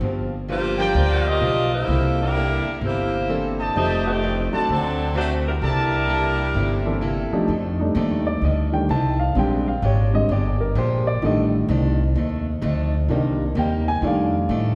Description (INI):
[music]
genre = jazz, big band swing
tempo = 128 BPM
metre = 4/4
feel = swing 66% on 8ths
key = F mixolydian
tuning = A4 = 441 Hz
[part]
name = picked acoustic archtop guitar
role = accompaniment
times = 0.0-14.8 s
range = F2 to A4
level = -32 LUFS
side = equal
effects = none
[part]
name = upright bass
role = bass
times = 0.0-14.8 s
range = F1 to A2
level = -25 LUFS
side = equal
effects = none
[part]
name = mellow saxophone section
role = melody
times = 0.5-7.3 s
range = Eb3 to Eb5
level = -26 LUFS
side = equal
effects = none
[part]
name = warm baby grand piano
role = accompaniment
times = 0.8-14.8 s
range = D3 to A5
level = -26 LUFS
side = equal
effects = none
[part]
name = warm trumpet section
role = stabs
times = 0.8-6.3 s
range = Bb4 to A5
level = -29 LUFS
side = equal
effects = none
[sound]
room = wet scoring stage reverb, RT60 1.8 s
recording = recorded in a church or concert hall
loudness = -21 LUFS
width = mono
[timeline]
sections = 0.0-7.5 A section; 7.5-14.8 B section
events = grand piano solo 7.5-14.8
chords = 0.0 Gm7; 1.9 C13; 3.8 F13; 4.7 D7; 5.6 C13; 7.5 F13; 9.4 Bb13; 11.2 F13; 13.1 Cm7; 14.0 F13